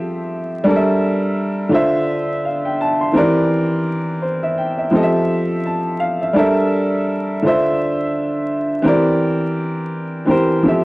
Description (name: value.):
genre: hip hop.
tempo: 84 BPM.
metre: 4/4.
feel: swing 57% on 16ths.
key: unclear.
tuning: A4 = 439 Hz.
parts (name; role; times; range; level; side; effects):
dark upright piano; solo; 0.0-10.8 s; D3 to C6; -15 LUFS; equal; none.
room: moderate studio reverb, RT60 0.6 s.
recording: worn, warbling old tape, cassette tape, vinyl crackle, warbly pitch drift.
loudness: -15 LUFS.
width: side -21 dB against mid.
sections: 0.0-10.8 A section.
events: none.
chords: 0.0 Fmaj7; 0.7 Gm69; 1.7 Dm7; 3.2 C7/E; 4.9 Fmaj7; 6.4 Gm69; 7.4 Dm7; 8.9 C7/E.